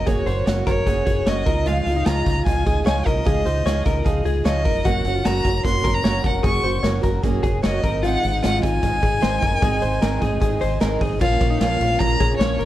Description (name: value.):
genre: jangly indie pop.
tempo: 151 BPM.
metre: 4/4.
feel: straight.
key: Db major.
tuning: A4 = 440 Hz.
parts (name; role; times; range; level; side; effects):
rich violin; melody; 0.0-12.7 s; Db5 to Db6; -24 LUFS; equal; slapback echo.
picked twelve-string acoustic guitar; accompaniment; 0.0-12.7 s; Ab2 to Gb4; -26 LUFS; right 7 dB; none.
direct-recorded clean electric guitar; arpeggios; 0.0-12.7 s; Eb4 to Db5; -26 LUFS; left 4 dB; analog chorus.
deep dub fingered electric bass; bass; 0.0-12.7 s; F1 to Db2; -24 LUFS; equal; none.
raw garage drum kit; drums; 0.1-12.7 s; crash cymbal, hi-hat, kick drum, ride cymbal, snare drum; -23 LUFS; equal; none.
string machine, full ensemble; sustained chords; 11.2-12.7 s; F3 to Db4; -31 LUFS; left 2 dB; ensemble chorus.
room: little or no reverb.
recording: none.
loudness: -18 LUFS.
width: side -14 dB against mid.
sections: 0.0-11.2 A section; 11.2-12.7 B section.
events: none.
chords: 0.0 Gb; 1.5 Dbadd9; 4.9 Gb; 7.8 Ab; 11.2 Bbm.